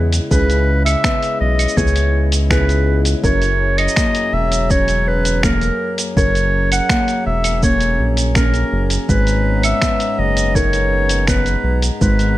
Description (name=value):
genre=folktronica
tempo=82 BPM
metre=4/4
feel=straight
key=unclear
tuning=A4 = 440 Hz
part: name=clear clarinet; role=melody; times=0.0-12.4 s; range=A#4 to F#5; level=-20 LUFS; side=right 1 dB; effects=none
part: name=pedal harmonium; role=sustained chords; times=0.0-12.4 s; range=C#3 to A#5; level=-25 LUFS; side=left 2 dB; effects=none
part: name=nylon-string guitar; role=arpeggios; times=0.0-12.4 s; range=F#2 to A#4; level=-22 LUFS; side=left 1 dB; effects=ping-pong delay
part: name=round analog bass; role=bass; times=0.0-12.4 s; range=E1 to E2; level=-17 LUFS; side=equal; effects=none
part: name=lo-fi sampler-style drum kit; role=drums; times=0.1-12.3 s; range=cabasa, claves, finger snaps, hi-hat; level=-23 LUFS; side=right 2 dB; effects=none
part: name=electronic kick drum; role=drums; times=0.3-12.2 s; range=none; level=-18 LUFS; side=equal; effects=overdrive
room=little or no reverb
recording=none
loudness=-14 LUFS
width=side -15 dB against mid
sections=0.0-12.4 A section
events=none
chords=0.0 C#m7; 3.2 F#7; 9.1 G#madd9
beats=| 0.31 1.04 1.77 2.51 | 3.24 3.97 4.70 5.43 | 6.17 6.90 7.63 8.36 | 9.09 9.82 10.55 11.29 | 12.02